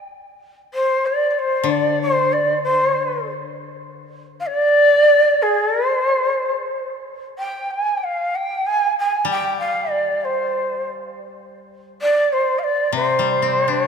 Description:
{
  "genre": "japanese traditional, Japanese chamber music",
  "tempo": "60-67 BPM",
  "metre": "2/4",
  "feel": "rubato",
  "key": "G in sen",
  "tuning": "A4 = 441 Hz",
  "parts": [
    { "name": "breathy shakuhachi", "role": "melody", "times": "0.7-13.9 s", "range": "C5 to Ab5", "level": "-17 LUFS", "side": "equal", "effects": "none" },
    { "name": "koto", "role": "accompaniment", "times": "1.6-4.4, 9.2-13.9 s", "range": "C3 to D4", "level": "-25 LUFS", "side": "left 7 dB", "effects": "none" }
  ],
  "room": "wet church reverb, RT60 3.5 s",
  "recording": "none",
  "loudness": "-16 LUFS",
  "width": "side -6 dB against mid",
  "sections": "0.0-13.9 A section",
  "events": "none",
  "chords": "none"
}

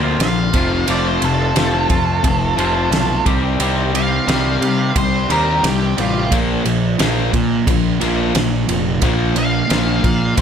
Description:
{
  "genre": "quiet-loud alternative rock",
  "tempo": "88 BPM",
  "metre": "4/4",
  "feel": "straight",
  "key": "unclear",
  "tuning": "A4 = 440 Hz",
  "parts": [
    { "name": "twangy electric guitar", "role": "arpeggios", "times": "0.0-6.3 s", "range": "F2 to G4", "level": "-23 LUFS", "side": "right 7 dB", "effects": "none" },
    { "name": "distorted electric guitar", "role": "riff", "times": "0.0-10.4 s", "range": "F2 to C4", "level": "-21 LUFS", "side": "left 11 dB", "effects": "distortion" },
    { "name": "fuzz picked electric bass", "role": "bass", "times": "0.0-10.4 s", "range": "F1 to C3", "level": "-20 LUFS", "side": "equal", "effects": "overdrive" },
    { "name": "octave-fuzz lead guitar", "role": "melody", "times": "0.2-10.4 s", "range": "F4 to F5", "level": "-21 LUFS", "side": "equal", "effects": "distortion, slapback echo" },
    { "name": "loose indie drum kit", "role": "drums", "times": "0.2-10.4 s", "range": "kick drum, ride cymbal, snare drum", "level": "-20 LUFS", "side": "right 1 dB", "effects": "none" },
    { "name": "thick fuzz guitar", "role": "riff", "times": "6.3-10.4 s", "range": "Bb2 to Bb3", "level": "-21 LUFS", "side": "right 11 dB", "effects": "distortion" }
  ],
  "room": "light reverb",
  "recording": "none",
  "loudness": "-14 LUFS",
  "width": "side -8 dB against mid",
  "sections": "0.0-10.4 A section",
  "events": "lead electric guitar solo 0.0-10.4",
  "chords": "0.0 Bbadd9; 0.5 F; 3.3 Cm; 6.3 Bb5"
}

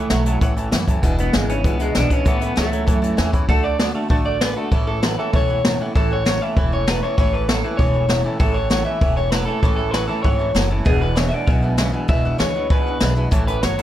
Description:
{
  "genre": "rockabilly",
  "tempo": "195 BPM",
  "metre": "4/4",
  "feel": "straight",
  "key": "A major",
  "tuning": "A4 = 440 Hz",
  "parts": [
    { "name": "electric guitar through a small old amp", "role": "melody", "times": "0.0-13.8 s", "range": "G#3 to E5", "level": "-23 LUFS", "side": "equal", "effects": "tape echo" },
    { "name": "clear upright piano", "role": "accompaniment", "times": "0.0-13.8 s", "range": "B4 to B5", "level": "-32 LUFS", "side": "left 3 dB", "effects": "plate reverb" },
    { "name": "picked steel-string acoustic guitar", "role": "accompaniment", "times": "0.0-13.8 s", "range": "E2 to F#4", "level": "-28 LUFS", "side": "left 2 dB", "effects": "none" },
    { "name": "twangy electric guitar", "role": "riff", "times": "0.0-13.8 s", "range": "E2 to B3", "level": "-27 LUFS", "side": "right 2 dB", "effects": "phaser" },
    { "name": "upright bass", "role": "bass", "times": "0.0-13.8 s", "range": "E1 to F#2", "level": "-23 LUFS", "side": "equal", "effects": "none" },
    { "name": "jazz brush drum kit", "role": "drums", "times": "0.1-13.8 s", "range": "hi-hat, kick drum, snare drum", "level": "-20 LUFS", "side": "equal", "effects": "none" }
  ],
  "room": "light reverb",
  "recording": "none",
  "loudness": "-16 LUFS",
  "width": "side -12 dB against mid",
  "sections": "0.0-3.5 A section; 3.5-13.3 B section",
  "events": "none",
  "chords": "0.0 A; 1.0 E7; 2.3 A; 3.5 D; 4.7 A; 10.9 E7; 13.3 A"
}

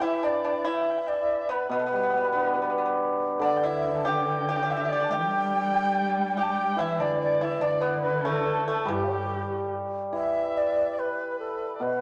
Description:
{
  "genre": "chinese traditional, Chinese chamber ensemble",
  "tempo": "71 BPM",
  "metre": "2/4",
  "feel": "rubato",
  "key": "G gong mode",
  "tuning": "A4 = 442 Hz",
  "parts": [
    { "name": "breathy bright low xiao", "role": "melody", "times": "0.0-12.0 s", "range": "G4 to G5", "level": "-30 LUFS", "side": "equal", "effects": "none" },
    { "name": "dark erhu", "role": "second line", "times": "0.0-12.0 s", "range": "G4 to A5", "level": "-36 LUFS", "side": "equal", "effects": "none" },
    { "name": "pipa", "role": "second line", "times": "0.0-9.7 s", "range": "G3 to G4", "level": "-34 LUFS", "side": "equal", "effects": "none" },
    { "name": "hammered dulcimer", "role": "accompaniment", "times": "0.0-12.0 s", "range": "B2 to G4", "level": "-32 LUFS", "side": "equal", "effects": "none" },
    { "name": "dark cello", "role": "second line", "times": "3.4-9.7 s", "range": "G2 to G3", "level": "-35 LUFS", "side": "equal", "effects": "none" }
  ],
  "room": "wet plate reverb, RT60 3.5 s",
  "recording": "none",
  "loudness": "-26 LUFS",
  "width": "mono",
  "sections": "0.0-10.2 A section; 10.2-12.0 B section",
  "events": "none",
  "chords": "none"
}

